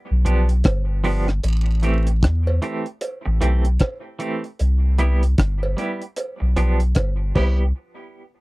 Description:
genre	roots reggae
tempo	76 BPM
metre	4/4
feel	swing 60% on 16ths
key	unclear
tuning	A4 = 439 Hz
part	soft dub sub bass	bass	0.1-7.7 s	G1 to E2	-18 LUFS	equal	none
part	semi-hollow electric guitar	accompaniment	0.2-7.6 s	E3 to G4	-26 LUFS	right 2 dB	tremolo, tape echo
part	deep reggae drum kit	drums	0.3-7.6 s	crash cymbal, hi-hat, kick drum, rim click	-20 LUFS	equal	none
part	cowbell and jawbone-type rattle	percussion	0.7-7.7 s	none	-30 LUFS	right 2 dB	none
room	little or no reverb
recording	dry, close 1970s-style studio recording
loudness	-18 LUFS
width	side -22 dB against mid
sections	0.0-1.4 A section; 1.4-7.8 B section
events	none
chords	0.0 G7; 1.4 Am7; 4.6 Cmaj7; 6.2 G7; 7.4 Cmaj7; 7.8 N.C.

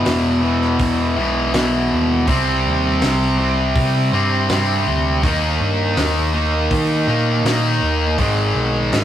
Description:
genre	quiet-loud alternative rock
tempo	81 BPM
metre	4/4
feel	straight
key	unclear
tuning	A4 = 440 Hz
part	distorted electric guitar	riff	0.0-9.0 s	E2 to D#4	-20 LUFS	left 4 dB	overdrive
part	overdriven electric guitar	riff	0.0-9.0 s	E2 to D#4	-24 LUFS	right 1 dB	none
part	tight distorted guitar	riff	0.0-9.0 s	E2 to D#4	-23 LUFS	right 6 dB	distortion
part	overdriven picked electric bass	bass	0.0-9.0 s	E1 to D#3	-21 LUFS	equal	none
part	loose indie drum kit	drums	0.1-9.0 s	hi-hat, kick drum, snare drum	-23 LUFS	equal	none
room	wet stone room reverb, RT60 1.1 s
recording	rough rehearsal-room recording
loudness	-15 LUFS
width	side -11 dB against mid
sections	0.0-9.0 A section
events	none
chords	0.0 E5; 2.3 C5; 5.2 D#5; 8.2 G#m

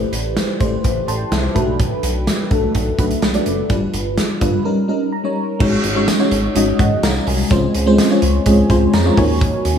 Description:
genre	1980s-style pop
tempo	126 BPM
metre	4/4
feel	straight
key	unclear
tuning	A4 = 440 Hz
part	FM electric piano with soft pad layer	accompaniment	0.0-9.8 s	G3 to C6	-17 LUFS	equal	chorus, phaser
part	chorused synth bass	bass	0.0-9.8 s	F#1 to F2	-20 LUFS	equal	none
part	modern studio drum kit	drums	0.1-9.8 s	crash cymbal, hi-hat, kick drum, snare drum, tambourine	-19 LUFS	equal	none
room	light reverb, studio ambience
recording	none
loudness	-14 LUFS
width	side -8 dB against mid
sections	0.0-5.6 A section; 5.6-9.8 B section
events	FM electric piano fill 0.8-1.8, 4.9-5.6, 8.7-9.4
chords	0.0 Am7; 1.6 Bm7; 3.7 G7; 4.7 D#7; 5.6 Ab7sus4; 7.5 Dbmaj7; 9.2 Ebm7

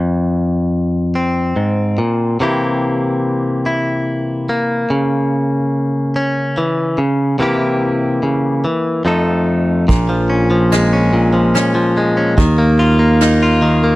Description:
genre	acoustic folk-pop ballad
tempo	72 BPM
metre	3/4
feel	straight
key	unclear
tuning	A4 = 440 Hz
part	direct-recorded clean electric guitar	accompaniment	0.0-14.0 s	F2 to A4	-14 LUFS	left 1 dB	none
part	sustaining fretless electric bass	bass	9.9-14.0 s	Bb1 to Eb2	-14 LUFS	right 1 dB	none
part	soft brush drum kit	drums	9.9-13.4 s	kick drum, ride cymbal, rim click	-19 LUFS	right 1 dB	none
room	studio ambience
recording	dry, close 1970s-style studio recording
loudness	-13 LUFS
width	side -18 dB against mid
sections	0.0-9.9 A section; 9.9-14.0 B section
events	none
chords	0.0 Fm; 2.4 C7; 4.9 Dbm; 7.4 C7; 9.1 F7; 9.9 Bbm7; 12.4 Ebsus2

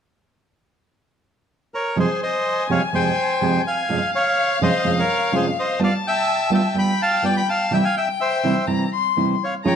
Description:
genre	tango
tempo	125 BPM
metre	4/4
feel	rubato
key	F minor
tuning	A4 = 439 Hz
part	bandoneon	melody	1.7-9.8 s	Ab4 to B5	-21 LUFS	equal	none
part	warm violin	second line	2.0-9.8 s	F5 to C6	-25 LUFS	left 6 dB	none
part	nylon-string guitar	accompaniment	2.0-9.7 s	F2 to G4	-21 LUFS	right 3 dB	none
room	moderate large studio reverb, RT60 1.3 s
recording	close, detailed microphones, lossy compression artefacts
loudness	-18 LUFS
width	side -8 dB against mid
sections	0.1-2.0 A section; 2.0-9.8 B section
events	none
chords	0.1 N.C.; 2.0 Fmadd9; 3.9 Dbmaj7/F; 5.8 G7; 7.7 C

